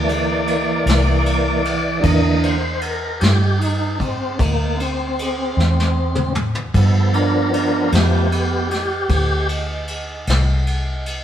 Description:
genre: slow blues.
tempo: 51 BPM (dotted quarters).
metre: 12/8.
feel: straight.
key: C mixolydian.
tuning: A4 = 440 Hz.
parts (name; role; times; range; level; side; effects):
tonewheel organ; sustained chords; 0.0-9.5 s; D3 to Eb5; -20 LUFS; right 1 dB; slow rotary speaker, overdrive, chorus vibrato.
vintage muted fingered electric bass; bass; 0.0-11.2 s; C2 to G2; -19 LUFS; equal; none.
vintage brush drum kit; drums; 0.1-11.2 s; kick drum, ride cymbal, snare drum, toms; -23 LUFS; left 1 dB; none.
room: moderate stone room reverb, RT60 1.3 s.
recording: band playing live in one room.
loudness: -16 LUFS.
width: side -10 dB against mid.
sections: 0.0-11.2 A section.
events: tonewheel organ solo 0.0-11.2; drum fill 5.6-6.8.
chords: 0.0 C9; 6.8 G9.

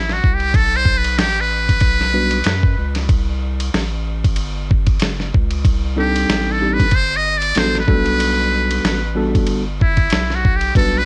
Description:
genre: hip hop, jazz-hop.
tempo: 94 BPM.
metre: 4/4.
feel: swing 57% on 16ths.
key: G major.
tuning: A4 = 440 Hz.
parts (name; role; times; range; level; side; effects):
trumpet with metal mute; melody; 0.0-11.1 s; E4 to Eb5; -21 LUFS; equal; analog delay.
saturated sub bass; bass; 0.0-11.1 s; F#1 to F#2; -24 LUFS; equal; none.
dusty soul sampler-style drum kit; drums; 0.1-10.9 s; hi-hat, kick drum, ride cymbal, snare drum; -20 LUFS; equal; vintage 12-bit sampler grit, cassette tape.
mellow tine electric piano; accompaniment; 2.1-11.0 s; G3 to B4; -22 LUFS; equal; cassette tape.
room: light reverb.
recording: home recording on cassette.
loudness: -17 LUFS.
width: mono.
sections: 0.0-11.1 A section.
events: muted trumpet solo 0.0-11.1.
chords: 0.0 Gmaj9 (rootless); 3.1 Cm6; 7.9 Gmaj9.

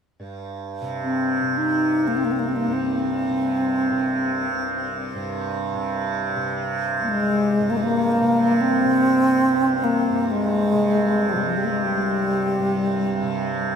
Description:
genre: world meditative, free-time meditation music.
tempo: free time.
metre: none.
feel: none.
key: unclear.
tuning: A4 = 439 Hz.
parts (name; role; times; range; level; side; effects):
tanpura; drone; 0.2-13.8 s; C2 to C3; -25 LUFS; right 2 dB; stereo widening.
bright bass flute; melody; 1.0-13.7 s; F3 to Eb4; -20 LUFS; left 1 dB; diffuse ambient delay.
room: wet huge ambient reverb, RT60 5.2 s.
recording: none.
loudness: -19 LUFS.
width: side -7 dB against mid.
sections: 0.2-13.8 A section.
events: none.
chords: none.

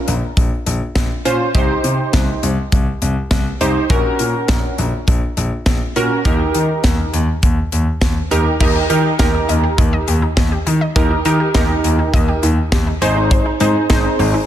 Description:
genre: synth-pop.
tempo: 102 BPM.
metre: 4/4.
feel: straight.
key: unclear.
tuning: A4 = 445 Hz.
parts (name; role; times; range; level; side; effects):
funky polysynth comp; accompaniment; 0.0-14.5 s; Db4 to C5; -18 LUFS; right 2 dB; chorus.
warm concert grand piano; bass; 0.1-14.3 s; Ab1 to Eb3; -18 LUFS; left 1 dB; none.
modern studio drum kit; drums; 0.1-14.3 s; crash cymbal, hi-hat, kick drum, snare drum; -17 LUFS; equal; none.
wide unison pluck; arpeggios; 8.6-14.4 s; C4 to Eb5; -24 LUFS; left 1 dB; tape echo.
room: light reverb, small room ambience.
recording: dense, heavily limited modern master, lossy compression artefacts.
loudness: -14 LUFS.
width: side -11 dB against mid.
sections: 0.0-8.6 A section; 8.6-14.5 B section.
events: none.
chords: 0.0 Bbm; 1.5 Cm; 3.9 Gb/Bb; 6.3 Eb; 13.0 Ab.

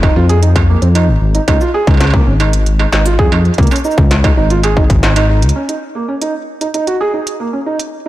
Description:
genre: IDM.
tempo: 114 BPM.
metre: 4/4.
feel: straight.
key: unclear.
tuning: A4 = 440 Hz.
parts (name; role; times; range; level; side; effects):
felt-muted upright piano; arpeggios; 0.0-8.1 s; Bb3 to Ab4; -17 LUFS; right 3 dB; low-pass filter, dub echo.
dark detuned saw bass; bass; 0.0-5.5 s; Ab1 to F2; -11 LUFS; left 1 dB; none.
electronic kick drum; drums; 0.0-5.0 s; none; -13 LUFS; left 1 dB; distortion.
industrial drum kit; drums; 0.0-7.9 s; cabasa, hi-hat, snare drum, struck metal; -20 LUFS; right 2 dB; dub echo.
room: light reverb.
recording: blown-out, overdriven recording, overdrive.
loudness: -10 LUFS.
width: side -15 dB against mid.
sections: 0.0-5.7 A section; 5.7-8.1 B section.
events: drum fill 5.4.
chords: 0.0 Fm7; 1.5 Db5; 5.7 Eb5.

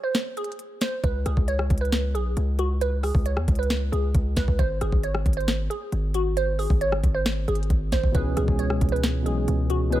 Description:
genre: hip hop, trap.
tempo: 135 BPM.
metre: 4/4.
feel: half-time.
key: C# minor.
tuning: A4 = 437 Hz.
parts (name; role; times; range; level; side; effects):
glassy wavetable pluck; melody; 0.0-10.0 s; F#4 to C#5; -28 LUFS; right 2 dB; chorus, low-pass filter.
trap drum kit; drums; 0.1-10.0 s; hi-hat, kick drum, rim click, snare drum; -25 LUFS; equal; none.
distorted 808-style bass; bass; 1.0-10.0 s; G#1 to E2; -25 LUFS; equal; distortion.
tine electric piano; accompaniment; 8.1-10.0 s; B2 to G#4; -27 LUFS; equal; medium stereo tremolo, low-pass filter.
room: little or no reverb.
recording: none.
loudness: -22 LUFS.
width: side -14 dB against mid.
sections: 0.0-10.0 A section.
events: break 0.0-1.0.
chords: 0.0 N.C.; 1.0 C#7(no3); 4.6 G#; 8.1 C#m7.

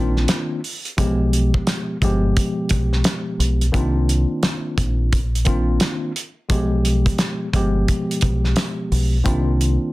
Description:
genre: hip hop, boom-bap hip-hop.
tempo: 87 BPM.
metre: 4/4.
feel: swing 63% on 16ths.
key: unclear.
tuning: A4 = 440 Hz.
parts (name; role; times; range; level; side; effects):
mellow tine electric piano; accompaniment; 0.0-9.9 s; B2 to G4; -23 LUFS; left 1 dB; medium stereo tremolo, cassette tape, high-pass filter, low-pass filter.
deep dub fingered electric bass; bass; 0.0-9.8 s; G1 to C2; -19 LUFS; equal; none.
cloth-damped thuddy drum kit; drums; 0.2-9.8 s; hi-hat, kick drum, snare drum; -21 LUFS; equal; none.
room: light reverb.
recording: dense, heavily limited modern master.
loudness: -17 LUFS.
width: side -19 dB against mid.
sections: 0.0-9.9 A section.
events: none.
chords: 0.0 Cm11; 1.0 G7b9; 3.7 Cm11; 6.5 G7b9; 9.3 Cm11.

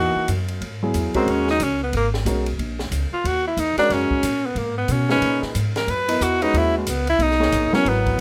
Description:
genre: modal jazz.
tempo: 182 BPM.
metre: 4/4.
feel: swing 61% on 8ths.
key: G# minor.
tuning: A4 = 443 Hz.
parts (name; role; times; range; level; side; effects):
clear tenor saxophone; melody; 0.0-8.2 s; G#3 to B4; -23 LUFS; equal; none.
dark grand piano; accompaniment; 0.0-8.2 s; A#2 to D#5; -26 LUFS; equal; none.
upright bass; bass; 0.0-8.2 s; G#1 to B2; -27 LUFS; equal; none.
open jazz drum kit; drums; 0.3-8.1 s; hi-hat, kick drum, ride cymbal, snare drum; -33 LUFS; equal; none.
room: light reverb.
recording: close, detailed microphones.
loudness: -21 LUFS.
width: mono.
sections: 0.6-8.2 A section.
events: tenor saxophone solo 0.6-8.2.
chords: 0.0 C#madd9 (rootless); 0.6 G#9sus4.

